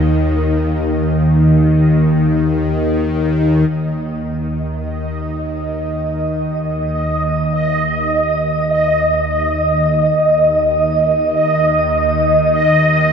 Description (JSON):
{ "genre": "dark ambient drone", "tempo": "free time", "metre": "none", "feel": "none", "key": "unclear", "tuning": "A4 = 440 Hz", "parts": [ { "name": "deep dark ambient pad", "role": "sustained chords", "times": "0.1-3.7 s", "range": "Bb3 to Eb5", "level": "-31 LUFS", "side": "equal", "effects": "none" }, { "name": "bowed-like drone", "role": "drone", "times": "0.0-13.1 s", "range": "Eb2 to Eb3", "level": "-16 LUFS", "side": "equal", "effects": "built-in reverb, phaser" }, { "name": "bubbling stepped-filter texture", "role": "texture", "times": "0.0-13.1 s", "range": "Eb5", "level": "-17 LUFS", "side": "right 1 dB", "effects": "chorus, built-in reverb, shimmer reverb" } ], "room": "wet huge ambient reverb, RT60 7.9 s", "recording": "none", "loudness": "-13 LUFS", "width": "side -6 dB against mid", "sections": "0.0-3.7 A section; 3.7-13.1 B section", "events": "none", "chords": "0.0 Eb5; 3.7 N.C." }